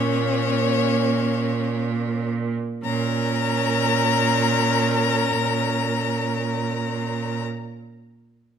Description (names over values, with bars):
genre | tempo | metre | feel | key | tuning
classical, slow romantic movement for string quartet | free time | none | none | Bb minor | A4 = 440 Hz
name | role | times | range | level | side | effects
rich violin | melody | 0.0-7.4 s | Db5 to Bb5 | -25 LUFS | left 9 dB | none
rich violin | second line | 0.0-7.4 s | Db4 to Bb4 | -28 LUFS | left 4 dB | none
warm viola | accompaniment | 0.0-7.4 s | Bb3 to Db4 | -27 LUFS | right 3 dB | none
clear cello | bass | 0.0-7.4 s | Bb2 | -24 LUFS | right 5 dB | none
room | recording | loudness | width
wet recital hall reverb, RT60 1.3 s | none | -20 LUFS | side -8 dB against mid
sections
0.0-2.8 A section; 2.8-7.1 B section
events
slowing down 0.0-2.8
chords
0.0 Bbm